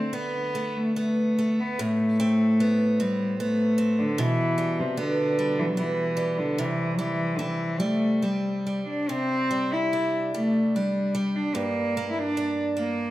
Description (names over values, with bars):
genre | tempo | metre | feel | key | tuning
celtic folk, Celtic slow air | 74 BPM | 3/4 | rubato | unclear | A4 = 442 Hz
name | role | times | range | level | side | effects
rich cello | melody | 0.0-13.1 s | C3 to E4 | -24 LUFS | left 1 dB | none
picked steel-string acoustic guitar | accompaniment | 0.0-13.1 s | G2 to D4 | -29 LUFS | right 2 dB | none
room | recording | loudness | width
moderate recital hall reverb, RT60 1.5 s | none | -23 LUFS | side -15 dB against mid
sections
0.0-13.1 A section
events
none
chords
0.0 D5; 1.8 Amadd9; 4.2 Cmaj9/B (rootless); 6.6 C5; 9.1 Csus2; 11.6 Gm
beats
0.14 0.97 | 1.80 2.61 3.40 | 4.18 4.98 5.78 | 6.58 7.39 8.23 | 9.09 9.94 10.76 | 11.57 12.38